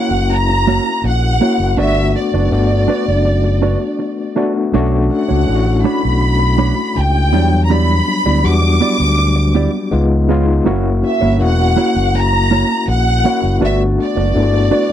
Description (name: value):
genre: soul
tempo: 81 BPM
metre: 4/4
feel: straight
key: unclear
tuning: A4 = 441 Hz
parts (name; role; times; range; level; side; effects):
- rich studio violin section; melody; 0.0-14.9 s; D5 to D6; -19 LUFS; equal; none
- overdriven tine electric piano; accompaniment; 0.0-14.9 s; F#3 to F#4; -18 LUFS; left 5 dB; fast tremolo
- mellow electric guitar; riff; 0.0-14.9 s; A3 to D5; -20 LUFS; right 7 dB; spring reverb
- overdriven fingered electric bass; bass; 0.1-14.7 s; E1 to E2; -15 LUFS; equal; none
room: little or no reverb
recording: dry, close 1970s-style studio recording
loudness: -12 LUFS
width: side -10 dB against mid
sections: 0.0-14.9 A section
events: none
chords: 0.0 F#7; 1.8 Gmaj7; 4.7 Bm9; 7.3 Em7; 9.9 C#9; 10.7 F#7; 13.6 Gmaj7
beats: 0.30 1.04 | 1.78 2.52 3.26 4.00 | 4.74 5.48 6.22 6.96 | 7.70 8.44 9.18 9.92 | 10.66 11.40 12.14 12.88 | 13.62 14.35